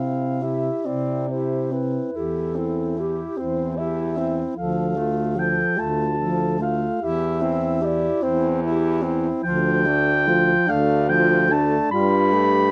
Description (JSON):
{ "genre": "classical, lyrical piece for single-reed quartet", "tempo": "49 BPM (dotted quarters)", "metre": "6/8", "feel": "uneven beats, rubato", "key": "C major", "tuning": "A4 = 440 Hz", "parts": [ { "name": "dark clarinet", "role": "melody", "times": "0.0-12.7 s", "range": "G4 to B5", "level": "-26 LUFS", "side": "equal", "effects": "none" }, { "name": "clear alto saxophone", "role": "second line", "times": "0.0-12.7 s", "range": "D4 to A4", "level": "-29 LUFS", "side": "equal", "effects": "none" }, { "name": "warm tenor saxophone", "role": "accompaniment", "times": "0.0-12.7 s", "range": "F3 to E4", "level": "-28 LUFS", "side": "equal", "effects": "none" }, { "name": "mellow baritone saxophone", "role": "bass", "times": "0.0-12.7 s", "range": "D2 to C3", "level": "-27 LUFS", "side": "equal", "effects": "none" } ], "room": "light reverb", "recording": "close, detailed microphones", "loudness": "-22 LUFS", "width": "mono", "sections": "0.0-12.7 A section", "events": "none", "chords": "0.0 C; 2.1 C/E; 4.6 Dm; 7.0 C/E; 9.4 Dm; 11.9 G9" }